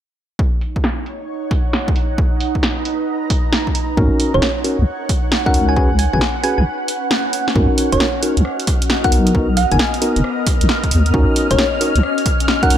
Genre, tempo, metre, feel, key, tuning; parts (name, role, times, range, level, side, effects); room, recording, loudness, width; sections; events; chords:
UK garage, two-step garage; 134 BPM; 4/4; swing 65% on 16ths; Eb minor; A4 = 440 Hz
electronic kick drum; drums; 0.4-12.7 s; -18 LUFS; equal
ethereal airy pad; texture; 0.7-12.8 s; B3 to A#5; -23 LUFS; equal; ensemble chorus, built-in reverb, sidechain pumping
punchy analog drum machine; drums; 0.6-12.8 s; hi-hat, rim click, snare drum; -21 LUFS; right 1 dB; low-pass filter on hats, low-pass filter on snare, low-pass filter on room
mellow tine electric piano; stabs; 4.0-12.8 s; Cb4 to Cb5; -21 LUFS; equal; low-pass filter, dub echo
deep soft wobble bass; bass; 4.0-12.8 s; Eb1 to Eb2; -16 LUFS; equal; chorus
thumb-piano-like synth pluck; melody; 4.3-12.8 s; Db5 to Ab5; -22 LUFS; equal; chorus, phaser, dub echo
soft string machine; sustained chords; 8.3-12.8 s; F6; -26 LUFS; equal; ensemble chorus, sidechain pumping
light reverb, digital ambience; -14 LUFS; side -10 dB against mid
0.4-7.6 A section; 7.6-12.8 B section
filter sweep on drum 0.4-7.6; break 6.7-7.6; drum fill 7.1-7.6; filter sweep on tine electric piano 7.6-12.8
0.4 Ebm7; 2.0 Bmaj7; 3.7 Ebm7; 5.8 Db7sus4; 7.6 Ebm7; 9.1 Bmaj7; 10.9 Ebm7